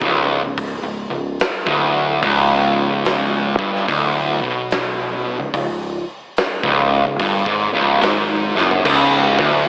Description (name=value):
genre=stoner and doom metal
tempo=72 BPM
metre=4/4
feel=swing 64% on 8ths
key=unclear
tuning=A4 = 440 Hz
part: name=fuzz guitar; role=riff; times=0.0-9.7 s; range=C#2 to B2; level=-19 LUFS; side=equal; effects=distortion
part: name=growling fingered electric bass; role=bass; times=0.0-9.7 s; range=C#1 to B1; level=-28 LUFS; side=equal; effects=overdrive
part: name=big rock drum kit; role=drums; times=0.0-9.5 s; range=crash cymbal, hi-hat, kick drum, snare drum, toms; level=-25 LUFS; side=equal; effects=none
part: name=thick fuzz guitar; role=riff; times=8.9-9.7 s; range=C#2 to D2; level=-21 LUFS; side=equal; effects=distortion
room=light reverb, small room ambience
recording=AM radio sound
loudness=-18 LUFS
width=mono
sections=0.0-8.9 A section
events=drum fill 8.4-8.9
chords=0.0 C#5; 8.9 N.C.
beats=0.57 1.40 | 2.23 3.06 3.88 4.71 | 5.54 6.37 7.20 8.02 | 8.85